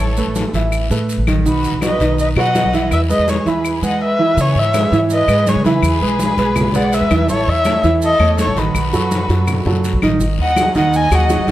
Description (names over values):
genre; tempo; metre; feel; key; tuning
latin, Cuban son and guajira; 164 BPM; 4/4; straight; E major; A4 = 439 Hz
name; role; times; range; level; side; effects
dark erhu; melody; 0.0-11.5 s; B4 to G#5; -18 LUFS; left 1 dB; none
dark studio violin section; second line; 0.0-11.5 s; F#4 to D#5; -26 LUFS; left 3 dB; tape echo
warm grand piano; arpeggios; 0.0-11.5 s; D#3 to E5; -18 LUFS; right 3 dB; none
upright bass; bass; 0.0-11.5 s; G#1 to E3; -18 LUFS; equal; none
congas; percussion; 0.2-11.5 s; none; -24 LUFS; left 2 dB; none
maracas; percussion; 0.2-11.5 s; none; -34 LUFS; right 6 dB; none
guiro; percussion; 0.4-11.5 s; none; -32 LUFS; left 6 dB; none
claves; percussion; 0.7-11.3 s; none; -29 LUFS; left 8 dB; none
room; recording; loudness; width
moderate large studio reverb, RT60 1.2 s; none; -13 LUFS; side -14 dB against mid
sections
0.0-4.4 A section; 4.4-11.5 B section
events
none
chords
0.0 Aadd9; 1.5 B; 2.9 E; 4.4 C#m7; 5.8 E; 7.3 A; 8.8 B7; 10.2 G#5